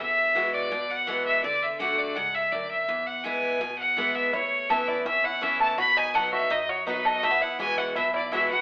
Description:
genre	bluegrass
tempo	166 BPM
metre	4/4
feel	straight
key	unclear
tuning	A4 = 440 Hz
part	clear fiddle	melody	0.0-8.6 s	B4 to B5	-24 LUFS	equal	none
part	picked steel-string acoustic guitar	accompaniment	0.0-8.6 s	E2 to F#4	-31 LUFS	equal	none
part	upright bass	bass	0.0-8.5 s	E1 to F#2	-51 LUFS	equal	none
part	bluegrass banjo	melody	4.3-8.6 s	E3 to A4	-28 LUFS	equal	none
room	wet studio reverb, RT60 0.6 s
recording	band playing live in one room, telephone sound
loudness	-22 LUFS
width	side -24 dB against mid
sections	0.0-8.6 A section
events	none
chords	0.0 Eadd9; 1.4 D; 2.9 E; 4.3 Aadd9; 5.8 B; 7.2 Eadd9

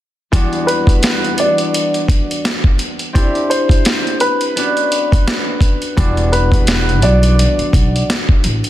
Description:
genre	hip hop, boom-bap hip-hop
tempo	85 BPM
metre	4/4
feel	swing 56% on 16ths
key	B minor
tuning	A4 = 441 Hz
part	concert harp	accompaniment	0.3-8.7 s	E2 to G4	-19 LUFS	left 1 dB	cassette tape, high-pass filter, low-pass filter
part	boom bap sampler-style drum kit	drums	0.3-8.7 s	hi-hat, kick drum, snare drum	-15 LUFS	equal	none
part	warm upright piano	melody	0.7-8.1 s	B4 to D5	-18 LUFS	equal	high-pass filter, low-pass filter
part	upright bass	bass	6.0-8.6 s	E1 to B1	-14 LUFS	equal	none
room	light reverb, small room ambience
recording	dense, heavily limited modern master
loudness	-12 LUFS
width	side -14 dB against mid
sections	0.3-8.7 A section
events	none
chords	0.3 Em7; 1.4 Bm; 3.1 Cadd9; 4.6 Bmadd9; 6.0 Em7; 7.0 Bm

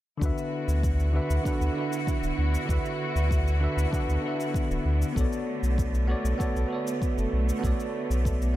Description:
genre	sunset chillout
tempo	97 BPM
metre	4/4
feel	straight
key	D major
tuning	A4 = 441 Hz
part	bell-like tine electric piano	accompaniment	0.2-8.6 s	D3 to F#5	-30 LUFS	moving between left 4 dB and right 5 dB	auto-pan, low-pass filter, diffuse ambient delay
part	rich symphonic string section	sustained chords	0.2-8.6 s	D3 to F#4	-33 LUFS	equal	vintage 12-bit sampler grit
part	warm sub bass	bass	0.2-8.6 s	D1 to D2	-25 LUFS	equal	none
part	cabasa	drums	0.2-8.5 s	none	-47 LUFS	left 3 dB	none
part	electronic kick drum	drums	0.2-8.4 s	none	-29 LUFS	equal	overdrive
room	light reverb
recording	none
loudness	-24 LUFS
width	side -14 dB against mid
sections	0.2-8.6 A section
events	none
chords	0.2 D69; 5.2 Bm9

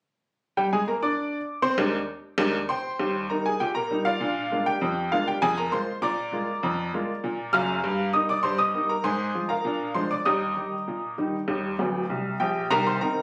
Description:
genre	ragtime piano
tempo	99 BPM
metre	2/4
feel	straight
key	Eb major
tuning	A4 = 440 Hz
part	bright upright piano	solo	0.6-13.2 s	D1 to F6	-26 LUFS	equal	none
room	light reverb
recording	recorded on a phone in the room, studio reverb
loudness	-26 LUFS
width	mono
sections	0.6-3.0 A section; 3.0-12.7 B section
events	upright piano fill 11.8-12.7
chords	0.6 Gmadd11; 1.8 Bb7/Eb; 3.0 Eb; 4.2 Bb7; 5.4 Bb7/F; 7.8 Eb/G; 9.0 Fm/Ab; 9.6 Bb7; 10.3 Eb; 12.7 Cm

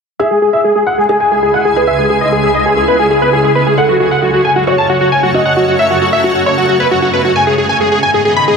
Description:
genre	trance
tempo	134 BPM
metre	4/4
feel	straight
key	unclear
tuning	A4 = 440 Hz
part	dense compressed supersaw	melody	0.2-8.6 s	F#4 to B5	-12 LUFS	equal	low-pass filter, ping-pong delay
part	dark baby grand piano	second line	0.2-8.6 s	F#4 to B5	-18 LUFS	left 1 dB	low-pass filter, ping-pong delay
part	felt-muted upright piano	second line	0.2-7.3 s	G#4 to D#5	-18 LUFS	right 1 dB	dub echo
part	shimmering ambient pad	sustained chords	0.9-8.6 s	C#2 to D#5	-16 LUFS	equal	chorus, built-in reverb
room	moderate huge ambient reverb, RT60 5.8 s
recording	none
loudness	-9 LUFS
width	side -5 dB against mid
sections	0.2-8.6 A section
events	filter sweep on supersaw synth 0.2-8.6; filter sweep on grand piano 0.2-8.6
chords	0.2 C#m; 3.8 F#m; 7.4 G#m

